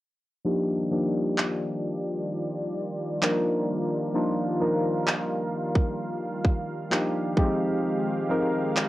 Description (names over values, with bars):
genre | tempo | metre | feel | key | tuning
contemporary R&B | 65 BPM | 4/4 | straight | Eb major | A4 = 441 Hz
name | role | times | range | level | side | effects
soft electric-piano-like synth keys | accompaniment | 0.4-8.9 s | F3 to Bb4 | -26 LUFS | left 1 dB | chorus, low-pass filter, cassette tape
warm analog pad | sustained chords | 0.4-8.9 s | Eb3 to F5 | -32 LUFS | right 1 dB | chorus, low-pass filter, cassette tape
trap drum kit | drums | 1.4-8.9 s | handclaps, kick drum | -24 LUFS | equal | overdrive, cassette tape
room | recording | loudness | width
light reverb | home recording on cassette | -24 LUFS | side -16 dB against mid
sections
0.4-8.9 A section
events
filter sweep 0.4-8.9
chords
0.4 Ebmaj9; 7.4 Fm9